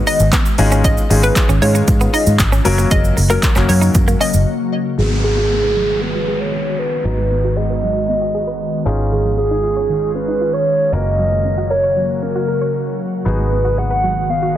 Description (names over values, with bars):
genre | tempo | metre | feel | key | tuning
dance-pop | 116 BPM | 4/4 | straight | G# dorian | A4 = 440 Hz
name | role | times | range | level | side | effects
warm baby grand piano | accompaniment | 0.0-14.6 s | F#3 to A#5 | -23 LUFS | left 4 dB | sidechain pumping, low-pass filter
ethereal airy pad | sustained chords | 0.0-14.6 s | C#3 to F#4 | -23 LUFS | equal | ensemble chorus, built-in reverb, sidechain pumping, low-pass filter
direct-recorded clean electric guitar | riff | 0.0-4.3 s | G#3 to D#4 | -24 LUFS | right 4 dB | analog chorus
hollow square pluck | melody | 0.1-4.3 s | A#4 to D#5 | -21 LUFS | left 1 dB | chorus, sidechain pumping, tape echo
deep house drum kit | drums | 0.1-4.5 s | handclaps, hi-hat, kick drum, shaker | -16 LUFS | equal | none
egg shaker | percussion | 0.1-4.5 s | none | -34 LUFS | right 5 dB | none
vintage muted fingered electric bass | bass | 0.2-14.6 s | F#1 to G#2 | -17 LUFS | equal | sidechain pumping
hollow clarinet-like synth lead | melody | 5.0-14.6 s | G#4 to F#5 | -18 LUFS | right 1 dB | chorus, low-pass filter, tape echo
soft round pluck | arpeggios | 5.0-14.5 s | D#3 to C#5 | -28 LUFS | right 3 dB | chorus, sidechain pumping, low-pass filter, tape echo
downlifter | sound effects | 5.0-9.1 s | none | -26 LUFS | left 1 dB | none
room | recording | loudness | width
light reverb | dense, heavily limited modern master | -13 LUFS | side -12 dB against mid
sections
0.0-5.0 A section; 5.0-14.6 B section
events
drop 0.0-5.0; break 4.5-5.0; filter sweep 5.0-14.6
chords
0.0 G#m7; 0.6 C#add9/G#; 2.7 F#; 5.0 G#m7; 8.9 C#add9/G#; 10.9 F#; 13.3 G#m7